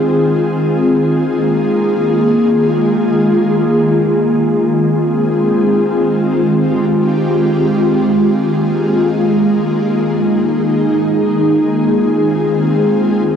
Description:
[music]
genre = hip hop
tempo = free time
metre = none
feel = none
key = F minor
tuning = A4 = 439 Hz
[part]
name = ethereal airy pad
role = solo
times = 0.0-13.4 s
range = Eb3 to Ab4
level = -11 LUFS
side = equal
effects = ensemble chorus, built-in reverb, cassette tape
[sound]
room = wet studio reverb, RT60 0.6 s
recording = home recording on cassette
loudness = -11 LUFS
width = side -8 dB against mid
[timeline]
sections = 0.0-4.5 A section; 4.5-13.4 B section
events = none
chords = 0.0 Fm7; 1.0 Bb7sus4; 4.5 Fm7; 8.1 Bb7sus4; 11.7 Fm7

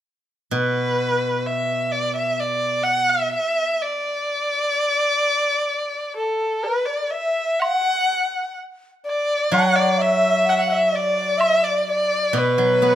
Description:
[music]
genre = chinese traditional, Chinese chamber ensemble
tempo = 64 BPM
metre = 4/4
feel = rubato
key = unclear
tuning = A4 = 440 Hz
[part]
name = steel-string zither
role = accompaniment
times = 0.5-3.3, 9.5-12.9 s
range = B2 to B3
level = -24 LUFS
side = right 1 dB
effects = none
[part]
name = rich erhu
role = melody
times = 0.6-12.9 s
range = A4 to F#5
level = -20 LUFS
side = equal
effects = none
[part]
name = xiao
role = second line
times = 6.2-12.9 s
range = A4 to A5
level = -22 LUFS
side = left 1 dB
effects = none
[part]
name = woodblock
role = percussion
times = 7.6-11.6 s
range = none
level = -27 LUFS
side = right 2 dB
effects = none
[sound]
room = light reverb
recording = close, detailed microphones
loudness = -18 LUFS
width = side -11 dB against mid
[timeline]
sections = 0.0-7.6 A section; 7.6-12.9 B section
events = none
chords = none

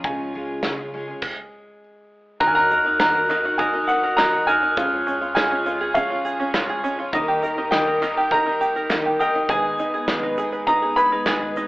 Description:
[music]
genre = indie folk with a building arrangement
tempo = 102 BPM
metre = 4/4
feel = straight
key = Eb minor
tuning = A4 = 440 Hz
[part]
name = dark upright piano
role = melody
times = 0.0-11.5 s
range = Eb5 to Cb6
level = -23 LUFS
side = equal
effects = none
[part]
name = fingerpicked steel-string acoustic guitar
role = accompaniment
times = 0.0-3.6 s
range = Db3 to Db4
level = -34 LUFS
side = equal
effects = none
[part]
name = picked twelve-string acoustic guitar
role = accompaniment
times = 0.0-11.7 s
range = Ab2 to Db5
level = -28 LUFS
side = left 1 dB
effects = none
[part]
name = rich chamber string section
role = sustained chords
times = 0.0-11.7 s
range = Db3 to Bb4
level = -36 LUFS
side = equal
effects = none
[part]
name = pure sine sub bass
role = bass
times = 0.0-11.7 s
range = Ab1 to Db3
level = -50 LUFS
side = equal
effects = none
[part]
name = natural country drum kit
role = drums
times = 0.0-11.4 s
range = crash cymbal, kick drum, snare drum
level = -26 LUFS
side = equal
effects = none
[part]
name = glockenspiel with soft plastic mallets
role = second line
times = 2.4-11.5 s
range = Bb5 to Ab6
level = -24 LUFS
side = equal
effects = none
[part]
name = felt-muted upright piano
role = accompaniment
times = 2.4-11.7 s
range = Ab1 to F5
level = -34 LUFS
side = left 1 dB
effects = none
[part]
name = open-back banjo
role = arpeggios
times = 2.4-11.7 s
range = Db4 to Cb5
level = -26 LUFS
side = right 2 dB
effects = none
[part]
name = egg shaker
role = percussion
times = 2.4-11.7 s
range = none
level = -60 LUFS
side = right 3 dB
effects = none
[part]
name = group handclap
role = percussion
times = 3.0-11.4 s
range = none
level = -31 LUFS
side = right 1 dB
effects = none
[sound]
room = moderate large studio reverb, RT60 1.2 s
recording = band playing live in one room, telephone sound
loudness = -18 LUFS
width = side -20 dB against mid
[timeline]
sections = 0.0-2.4 A section; 2.4-11.7 B section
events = stop 1.2-2.4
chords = 0.0 Db; 2.4 Ebm; 4.8 Db; 7.1 Eb; 9.5 Abm

